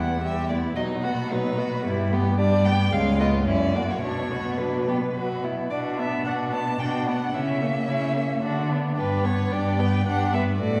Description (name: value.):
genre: quick classical-period movement for string quartet.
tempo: 110 BPM.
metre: 3/4.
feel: straight.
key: B minor.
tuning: A4 = 440 Hz.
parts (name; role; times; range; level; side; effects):
rich violin; melody; 0.0-10.8 s; B4 to A5; -31 LUFS; equal; none.
rich violin; second line; 0.0-10.8 s; C#4 to B4; -34 LUFS; equal; none.
warm viola; accompaniment; 0.0-10.8 s; F#3 to D4; -30 LUFS; equal; none.
rich cello; bass; 0.0-10.8 s; C#2 to D3; -28 LUFS; equal; none.
room: wet concert hall reverb, RT60 2.6 s.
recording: heard from further back in the room.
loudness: -24 LUFS.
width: mono.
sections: 0.0-5.7 A section; 5.7-10.8 B section.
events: none.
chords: 0.0 Em; 0.8 B; 1.8 Em/G; 2.9 C#7; 3.5 F#7; 4.0 Bm; 7.3 A#dim/C#; 8.4 Bm/D; 9.0 G.